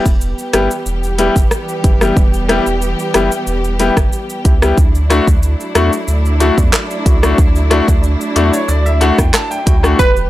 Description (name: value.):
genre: dancehall.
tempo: 92 BPM.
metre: 4/4.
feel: straight.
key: unclear.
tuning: A4 = 442 Hz.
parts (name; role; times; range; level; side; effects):
bright baby grand piano; accompaniment; 0.0-10.0 s; G3 to A5; -16 LUFS; left 3 dB; sidechain pumping.
warm studio string section; sustained chords; 0.0-10.3 s; E3 to G4; -21 LUFS; right 1 dB; sidechain pumping.
warm sub bass; bass; 0.1-10.3 s; E1 to E2; -16 LUFS; equal; none.
pop drum kit; drums; 0.1-10.3 s; handclaps, hi-hat, kick drum, rim click, shaker; -13 LUFS; equal; none.
glassy wavetable pluck; melody; 10.0-10.1 s; B4; -13 LUFS; right 3 dB; chorus.
room: digital ambience.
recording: dry, gritty hardware recording, transformer saturation.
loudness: -11 LUFS.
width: side -15 dB against mid.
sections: 0.0-10.0 A section.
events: grand piano fill 8.0-10.0.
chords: 0.0 Em; 4.8 Dadd9.